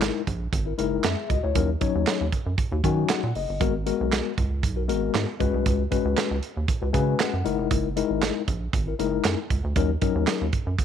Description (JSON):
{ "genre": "early-eighties boogie funk", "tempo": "117 BPM", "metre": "4/4", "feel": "straight", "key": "unclear", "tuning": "A4 = 441 Hz", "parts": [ { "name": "mellow tine electric piano", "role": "accompaniment", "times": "0.0-10.5 s", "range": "F#3 to G#5", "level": "-26 LUFS", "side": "left 12 dB", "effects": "medium stereo tremolo" }, { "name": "rubbery square bass", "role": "bass", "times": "0.0-10.8 s", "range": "E#1 to D#3", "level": "-27 LUFS", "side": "right 1 dB", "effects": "none" }, { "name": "modern studio drum kit", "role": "drums", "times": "0.0-10.8 s", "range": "handclaps, hi-hat, kick drum, snare drum", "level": "-26 LUFS", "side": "right 4 dB", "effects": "none" } ], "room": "studio reverb", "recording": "1960s-style stereo", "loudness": "-22 LUFS", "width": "side -8 dB against mid", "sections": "0.0-10.8 A section", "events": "tine electric piano fill 2.6-3.6, 6.7-7.7", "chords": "0.0 F#13; 1.6 D#m7; 3.6 G#m9; 5.4 C#7sus4; 7.5 F#13; 9.8 D#m7" }